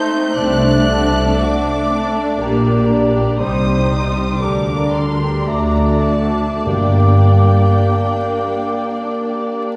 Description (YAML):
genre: classical, slow romantic movement for symphony orchestra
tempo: 48-61 BPM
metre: 3/4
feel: rubato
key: G minor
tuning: A4 = 439 Hz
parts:
  - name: warm symphonic violin section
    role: melody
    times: 0.0-9.6 s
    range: G5 to G6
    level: -29 LUFS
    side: equal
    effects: none
  - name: bright clarinet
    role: second line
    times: 0.0-9.8 s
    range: D4 to G4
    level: -28 LUFS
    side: equal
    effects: none
  - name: mellow cor anglais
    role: second line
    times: 0.0-9.8 s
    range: C5 to D5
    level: -28 LUFS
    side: equal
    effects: none
  - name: mellow hollow small flute group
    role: second line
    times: 0.0-9.8 s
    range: A5 to D6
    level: -29 LUFS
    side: equal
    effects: none
  - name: rich symphonic violin section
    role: second line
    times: 0.0-9.8 s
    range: G3 to D5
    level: -29 LUFS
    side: equal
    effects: none
  - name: mellow bassoon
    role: accompaniment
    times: 0.0-9.8 s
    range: G3 to Bb3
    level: -26 LUFS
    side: equal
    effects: none
  - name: rich symphonic viola section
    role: accompaniment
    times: 0.0-9.8 s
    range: G3 to Eb4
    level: -25 LUFS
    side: equal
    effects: none
  - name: mellow French horn section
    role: sustained chords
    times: 0.0-9.6 s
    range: G4 to C5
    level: -28 LUFS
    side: equal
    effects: none
  - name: dark symphonic cello section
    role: bass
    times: 0.4-7.7 s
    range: G2 to D3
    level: -22 LUFS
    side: equal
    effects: none
  - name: rich symphonic double bass section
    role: bass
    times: 0.4-7.7 s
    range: G1 to D2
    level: -21 LUFS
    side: equal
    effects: none
  - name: timpani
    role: percussion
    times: 6.7-8.4 s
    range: G2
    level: -23 LUFS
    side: equal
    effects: none
room: wet scoring stage reverb, RT60 1.6 s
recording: heard from further back in the room, vinyl crackle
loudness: -16 LUFS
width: mono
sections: 0.0-9.8 A section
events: none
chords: 0.4 D7/C; 2.4 Gm/Bb; 3.4 Cm; 4.4 Gm/D; 5.5 D; 6.7 Gm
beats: | 0.36 1.39 2.40 | 3.40 4.41 5.48 | 6.66 7.88 9.04